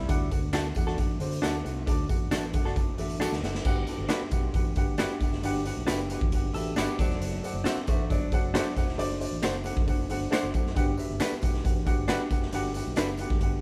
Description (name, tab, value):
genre	uptempo 1960s-style soul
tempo	135 BPM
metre	4/4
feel	straight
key	G major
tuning	A4 = 440 Hz
part	warm upright piano	accompaniment	0.0-13.6 s	G2 to A5	-35 LUFS	equal	none
part	clean electric guitar	riff	0.0-0.3, 6.5-8.7 s	F#3 to A4	-39 LUFS	equal	none
part	fingered electric bass	bass	0.0-13.6 s	E1 to D3	-37 LUFS	equal	none
part	raw garage drum kit	drums	0.1-13.5 s	crash cymbal, hi-hat, kick drum, snare drum	-31 LUFS	equal	none
part	tambourine and handclaps	percussion	0.1-13.3 s	none	-43 LUFS	equal	none
part	direct-recorded clean electric guitar	stabs	0.5-13.1 s	D4 to C5	-32 LUFS	equal	none
room	light reverb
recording	band playing live in one room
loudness	-28 LUFS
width	mono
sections	0.0-3.7 A section; 3.7-13.6 B section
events	drum fill 3.2-3.7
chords	0.1 D; 3.7 Gmaj7; 7.0 D7; 10.8 Gmaj7